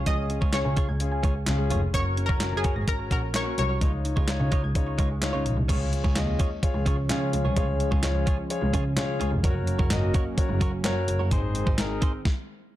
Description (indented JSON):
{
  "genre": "dance-pop",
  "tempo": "128 BPM",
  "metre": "4/4",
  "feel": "straight",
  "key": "Db major",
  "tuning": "A4 = 437 Hz",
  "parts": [
    { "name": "analog pluck", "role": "melody", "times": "0.0-4.5 s", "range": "Ab4 to Eb5", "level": "-31 LUFS", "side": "left 1 dB", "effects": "chorus, dub echo" },
    { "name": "direct-recorded clean electric guitar", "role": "riff", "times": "0.0-12.2 s", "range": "Ab3 to Db5", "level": "-36 LUFS", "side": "right 4 dB", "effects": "wide subtle chorus" },
    { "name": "warm concert grand piano", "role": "accompaniment", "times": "0.1-12.1 s", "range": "Db4 to Eb5", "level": "-32 LUFS", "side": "left 4 dB", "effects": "sidechain pumping" },
    { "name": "soft round pluck", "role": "arpeggios", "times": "0.1-5.6 s", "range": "F3 to Bb6", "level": "-38 LUFS", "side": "right 2 dB", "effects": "chorus, sidechain pumping, dub echo" },
    { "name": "clear double bass", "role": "bass", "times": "0.1-11.9 s", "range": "F1 to Db3", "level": "-27 LUFS", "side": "equal", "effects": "sidechain pumping" },
    { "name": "crisp 8-bit digital drum machine", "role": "drums", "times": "0.1-12.4 s", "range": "crash cymbal, handclaps, hi-hat, kick drum, snare drum", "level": "-26 LUFS", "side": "equal", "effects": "none" },
    { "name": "warm analog pad", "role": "sustained chords", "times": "5.7-12.2 s", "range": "Eb3 to Db4", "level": "-35 LUFS", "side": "right 1 dB", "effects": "chorus, sidechain pumping" }
  ],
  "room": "light reverb",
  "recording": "dark, warm production",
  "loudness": "-23 LUFS",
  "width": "side -14 dB against mid",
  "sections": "0.0-5.7 A section; 5.7-12.8 B section",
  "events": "stop 12.3-12.8",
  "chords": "0.0 Db; 1.9 Gb; 3.8 Dbadd9; 5.7 Db; 9.4 Gb; 11.3 Ab"
}